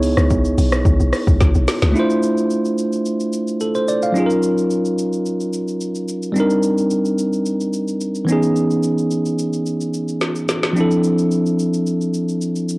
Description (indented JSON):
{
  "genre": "amapiano",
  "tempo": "109 BPM",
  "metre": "4/4",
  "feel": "straight",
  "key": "unclear",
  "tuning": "A4 = 440 Hz",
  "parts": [
    { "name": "bell-like tine electric piano", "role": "accompaniment", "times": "0.0-12.8 s", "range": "E3 to F5", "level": "-17 LUFS", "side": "equal", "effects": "cassette tape" },
    { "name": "deep log drum bass", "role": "bass", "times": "0.0-2.0 s", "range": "B1 to C#2", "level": "-16 LUFS", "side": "equal", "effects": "none" },
    { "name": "deep house drum kit", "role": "drums", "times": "0.0-12.8 s", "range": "hi-hat, kick drum, rim click, shaker, snare drum", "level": "-22 LUFS", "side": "equal", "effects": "none" }
  ],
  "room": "light reverb, digital ambience",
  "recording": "home recording on cassette",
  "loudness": "-16 LUFS",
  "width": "side -22 dB against mid",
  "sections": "0.0-2.0 A section; 2.0-12.8 B section",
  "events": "drop 0.0-2.0; drum fill 1.4-2.0, 10.2-10.8",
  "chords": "0.0 C#m9; 2.0 Dm9; 4.2 Ebm9; 6.4 Cm9; 8.3 C#m9; 10.8 Dm9"
}